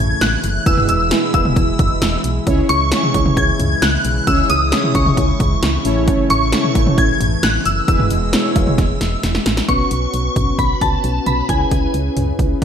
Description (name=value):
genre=synth-pop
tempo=133 BPM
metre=4/4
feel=straight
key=C# minor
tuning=A4 = 440 Hz
part: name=shimmering bell with halo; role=melody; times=0.0-11.9 s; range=G#5 to G#6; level=-20 LUFS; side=left 1 dB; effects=ensemble chorus
part: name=brassy analog pad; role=sustained chords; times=0.0-9.7 s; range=B2 to E4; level=-23 LUFS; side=equal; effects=chorus
part: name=solid FM bass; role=bass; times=0.0-12.6 s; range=E1 to C#2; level=-20 LUFS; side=equal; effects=none
part: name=punchy analog drum machine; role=drums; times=0.2-12.6 s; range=cowbell, hi-hat, kick drum, snare drum, toms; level=-18 LUFS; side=equal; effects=overdrive, gated reverb
part: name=analog synth brass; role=accompaniment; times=0.7-12.6 s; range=B3 to C#5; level=-22 LUFS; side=equal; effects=chorus
room=moderate lush hall reverb, RT60 1.7 s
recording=bright 1980s-style digital production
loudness=-14 LUFS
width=side -8 dB against mid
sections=0.0-9.7 A section; 9.7-12.6 B section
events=drum fill 8.8-9.7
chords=0.0 A; 0.7 E; 2.5 C#m; 5.9 A; 7.9 E; 9.7 Bsus2; 11.5 C#m7